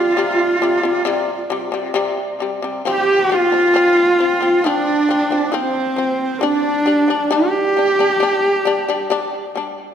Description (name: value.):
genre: mongolian traditional, Mongolian folk.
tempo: 67 BPM.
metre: 4/4.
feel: straight.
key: unclear.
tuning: A4 = 440 Hz.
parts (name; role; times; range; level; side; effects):
warm horsehead fiddle; melody; 0.0-9.6 s; C4 to G4; -17 LUFS; equal; none.
large dizi; second line; 0.0-9.5 s; D4 to C5; -21 LUFS; right 4 dB; none.
shamisen; arpeggios; 0.0-9.9 s; C3 to D4; -21 LUFS; left 4 dB; tape echo.
room: wet scoring stage reverb, RT60 1.6 s.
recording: none.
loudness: -15 LUFS.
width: side -8 dB against mid.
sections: 0.0-2.9 A section; 2.9-9.9 B section.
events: none.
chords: 0.0 C5; 2.9 F5; 6.4 G5.